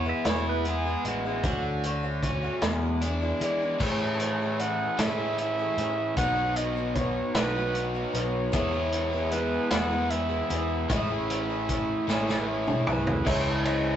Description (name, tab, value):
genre	folk rock and heartland rock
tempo	51 BPM (dotted quarters)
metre	6/8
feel	straight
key	E mixolydian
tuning	A4 = 435 Hz
part	pedal steel guitar	second line	0.0-1.8 s	F#4 to E5	-32 LUFS	right 4 dB	none
part	picked twelve-string acoustic guitar	accompaniment	0.0-14.0 s	E2 to C#5	-33 LUFS	left 3 dB	none
part	overdriven electric guitar	riff	0.0-14.0 s	E2 to F#4	-30 LUFS	right 1 dB	none
part	fingered electric bass	bass	0.0-14.0 s	A1 to E3	-33 LUFS	equal	none
part	vintage drum kit	drums	0.2-13.8 s	crash cymbal, hi-hat, kick drum, ride cymbal, snare drum, toms	-30 LUFS	equal	none
part	clear clarinet	melody	3.4-14.0 s	B4 to F#5	-31 LUFS	right 1 dB	none
part	warm upright piano	accompaniment	13.3-14.0 s	E4 to D#5	-33 LUFS	right 2 dB	none
room	moderate studio reverb, RT60 0.5 s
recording	rough rehearsal-room recording, nothing above 8.0 kHz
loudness	-25 LUFS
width	side -10 dB against mid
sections	0.0-3.8 A section; 3.8-13.3 B section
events	drum fill 12.1-13.3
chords	0.0 E; 1.4 Dmaj7; 2.6 E7; 3.8 Amaj7; 6.2 Badd9; 8.5 E; 10.9 Amaj7; 13.3 C#madd9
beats	0.25 | 1.43 2.62 | 3.80 4.99 | 6.17 7.35 | 8.53 9.72 | 10.90 12.08 | 13.26